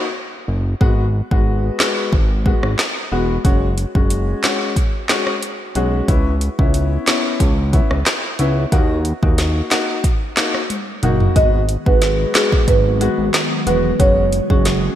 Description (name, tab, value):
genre	dancehall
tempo	91 BPM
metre	4/4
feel	straight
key	G# minor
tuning	A4 = 440 Hz
part	warm grand piano	accompaniment	0.0-14.9 s	G#3 to F#4	-22 LUFS	left 3 dB	wide subtle chorus, sidechain pumping
part	fat analog bass	bass	0.5-14.9 s	E1 to D#2	-18 LUFS	equal	none
part	afro-pop drum kit	drums	0.8-14.8 s	handclaps, hi-hat, kick drum, rim click, snare drum, toms	-17 LUFS	equal	gated reverb
part	marimba with medium mallets	melody	11.4-14.6 s	G#4 to D#5	-19 LUFS	right 3 dB	digital delay
part	glassy FM pad	sustained chords	11.8-15.0 s	C#3 to G#4	-24 LUFS	left 1 dB	ensemble chorus, built-in reverb, sidechain pumping
room	light reverb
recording	bright 1980s-style digital production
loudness	-14 LUFS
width	side -11 dB against mid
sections	0.0-11.4 A section; 11.4-15.0 B section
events	drum fill 10.7-11.4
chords	0.0 N.C.; 0.8 G#m7; 3.4 F#sus2; 6.1 C#m7; 8.7 D#m; 11.4 G#m7; 14.0 F#sus2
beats	0.15 | 0.81 1.47 2.13 2.79 | 3.45 4.11 4.76 5.42 | 6.08 6.74 7.40 8.06 | 8.72 9.38 10.04 10.70 | 11.36 12.02 12.68 13.34 | 14.00 14.65